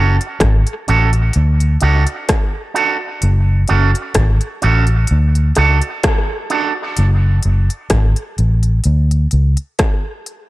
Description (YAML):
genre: dub reggae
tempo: 64 BPM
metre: 4/4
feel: swing 55% on 16ths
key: F# minor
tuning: A4 = 445 Hz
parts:
  - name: electric guitar with an envelope filter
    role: accompaniment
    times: 0.0-6.7 s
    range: C#4 to A4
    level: -19 LUFS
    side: right 5 dB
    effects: spring reverb, dub echo
  - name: vintage muted fingered electric bass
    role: bass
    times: 0.0-9.5 s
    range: F#1 to D2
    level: -12 LUFS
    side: equal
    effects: none
  - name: industrial drum kit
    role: drums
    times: 0.2-10.5 s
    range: hi-hat, kick drum, rim click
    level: -17 LUFS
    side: equal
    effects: distortion
room: little or no reverb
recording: echo-heavy mix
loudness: -13 LUFS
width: side -18 dB against mid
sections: 0.0-10.5 A section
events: none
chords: 0.0 F#m; 1.3 D; 3.2 F#m; 5.1 D; 7.0 F#m; 8.8 N.C.